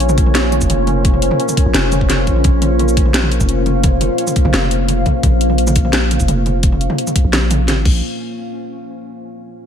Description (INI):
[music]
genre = half-time drum and bass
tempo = 172 BPM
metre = 4/4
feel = half-time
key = Bb minor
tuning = A4 = 438 Hz
[part]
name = deep dark ambient pad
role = sustained chords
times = 0.0-8.0 s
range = Bb3 to F5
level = -19 LUFS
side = equal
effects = chorus, built-in reverb, vintage 12-bit sampler grit, sidechain pumping
[part]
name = long sustained 808-style bass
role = bass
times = 0.0-8.0 s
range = F1 to Bb1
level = -17 LUFS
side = equal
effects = none
[part]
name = drum and bass drum kit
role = drums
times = 0.0-7.9 s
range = crash cymbal, hi-hat, shaker, snare drum, toms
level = -19 LUFS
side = equal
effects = none
[part]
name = pulsing gated texture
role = texture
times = 0.0-8.0 s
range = Db4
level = -25 LUFS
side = left 3 dB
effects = chorus, built-in reverb
[part]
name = electronic kick drum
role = drums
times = 0.2-7.9 s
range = none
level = -15 LUFS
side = equal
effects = none
[sound]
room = light reverb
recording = none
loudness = -12 LUFS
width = side -8 dB against mid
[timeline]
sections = 0.0-8.0 A section; 8.0-9.4 B section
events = none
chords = 0.0 Bbmadd9; 8.0 N.C.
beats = 0.00 0.35 0.70 | 1.05 1.40 1.75 2.10 | 2.44 2.79 3.14 3.49 | 3.84 4.19 4.54 4.88 | 5.23 5.58 5.93 6.28 | 6.63 6.98 7.33 7.68 | 8.03